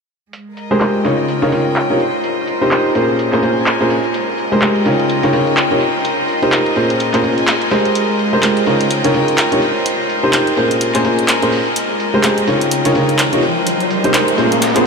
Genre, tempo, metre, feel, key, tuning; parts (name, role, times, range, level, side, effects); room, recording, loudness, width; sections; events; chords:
piano house; 126 BPM; 4/4; swing 58% on 16ths; Ab major; A4 = 440 Hz
dusty soul sampler-style drum kit; drums; 0.3-14.8 s; hi-hat, snare drum; -31 LUFS; right 2 dB
punchy analog drum machine; drums; 0.3-14.8 s; handclaps, hi-hat; -20 LUFS; equal; low-pass filter on hats, studio reverb, low-pass filter on snare
rich chamber string section; texture; 0.3-14.9 s; Db3 to Ab5; -19 LUFS; left 1 dB
clear upright piano; riff; 0.7-14.8 s; Bb2 to Db5; -15 LUFS; equal; vintage 12-bit sampler grit, low-pass filter, ping-pong delay
riser; sound effects; 12.7-14.9 s; -20 LUFS; equal
wet huge ambient reverb, RT60 8.1 s; dreamy mix soaked in reverb; -12 LUFS; side -4 dB against mid
0.3-14.9 A section
filter sweep on drum 0.3-14.9; riser 12.7-14.9
0.3 Abmaj9; 1.3 Db69; 2.0 Cm7; 3.0 Bbm9; 4.1 Abmaj9; 5.1 Db69; 5.8 Cm7; 6.8 Bbm9; 8.0 Abmaj9; 8.9 Db69; 9.6 Cm7; 10.6 Bbm9; 11.8 Abmaj9; 12.7 Db69; 13.4 Cm7